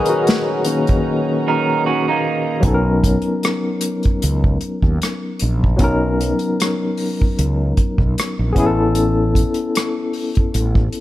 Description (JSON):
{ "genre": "R&B, neo-soul", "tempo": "76 BPM", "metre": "4/4", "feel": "swing 54% on 16ths", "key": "B major", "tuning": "A4 = 440 Hz", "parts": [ { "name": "barky tine electric piano", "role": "accompaniment", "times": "0.0-11.0 s", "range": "D#3 to D#5", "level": "-19 LUFS", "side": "left 2 dB", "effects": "overdrive, fast tremolo" }, { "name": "warm studio string section", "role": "sustained chords", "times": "0.0-2.6 s", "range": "C#4 to A#5", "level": "-30 LUFS", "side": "right 2 dB", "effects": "none" }, { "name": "dark horn section", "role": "stabs", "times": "0.0-2.2 s", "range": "D#3 to F#4", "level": "-26 LUFS", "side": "right 5 dB", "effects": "none" }, { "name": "unplugged drum kit", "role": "drums", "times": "0.1-11.0 s", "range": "hi-hat, kick drum, rim click, snare drum", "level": "-19 LUFS", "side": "equal", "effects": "none" }, { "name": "electric guitar through a small old amp", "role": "second line", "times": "1.5-2.6 s", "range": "A#3 to A#4", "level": "-19 LUFS", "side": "right 6 dB", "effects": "spring reverb" }, { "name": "fretless electric bass", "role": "bass", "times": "2.6-10.9 s", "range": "A1 to D#2", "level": "-18 LUFS", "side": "equal", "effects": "none" } ], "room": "little or no reverb", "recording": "none", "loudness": "-15 LUFS", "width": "side -15 dB against mid", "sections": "0.0-2.6 A section; 2.6-11.0 B section", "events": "tine electric piano solo 0.0-2.6; drums muted 1.1-2.6", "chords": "0.0 Bmaj9; 8.6 Aadd9", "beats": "0.26 1.05 1.84 | 2.63 3.42 4.21 5.00 | 5.79 6.58 7.37 8.16 | 8.95 9.74 10.53" }